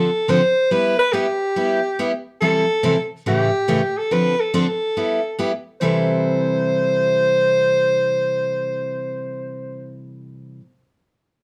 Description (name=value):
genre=country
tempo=141 BPM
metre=4/4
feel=swing 67% on 8ths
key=C major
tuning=A4 = 440 Hz
part: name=mellow alto saxophone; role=melody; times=0.0-10.0 s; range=G4 to C5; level=-21 LUFS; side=equal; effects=none
part: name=picked steel-string acoustic guitar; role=accompaniment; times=0.0-10.6 s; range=A2 to A4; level=-24 LUFS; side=equal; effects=none
room=moderate studio ambience, RT60 0.5 s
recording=none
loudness=-19 LUFS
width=mono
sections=0.0-5.8 A section; 5.8-9.2 B section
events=none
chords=0.0 Dm7; 0.7 G6; 2.4 C6; 3.3 A7; 4.1 Dm7; 5.0 G6; 5.8 C6